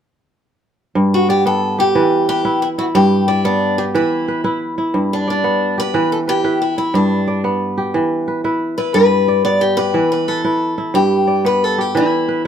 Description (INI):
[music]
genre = west african traditional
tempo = 120 BPM (dotted quarters)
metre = 12/8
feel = straight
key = G major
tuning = A4 = 438 Hz
[part]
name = kora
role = arpeggios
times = 1.0-12.5 s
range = G2 to D5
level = -16 LUFS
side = right 1 dB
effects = none
[part]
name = picked acoustic archtop guitar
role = melody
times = 1.1-12.4 s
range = D4 to D5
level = -17 LUFS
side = left 1 dB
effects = none
[sound]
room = moderate studio reverb, RT60 0.7 s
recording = band playing live in one room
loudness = -14 LUFS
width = side -8 dB against mid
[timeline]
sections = 1.0-12.5 A section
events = none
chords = 1.0 G; 2.0 Em; 2.9 G; 3.9 Em; 4.9 G; 5.9 Em; 6.9 G; 7.9 Em; 8.9 G; 9.9 Em; 10.9 G; 11.9 Em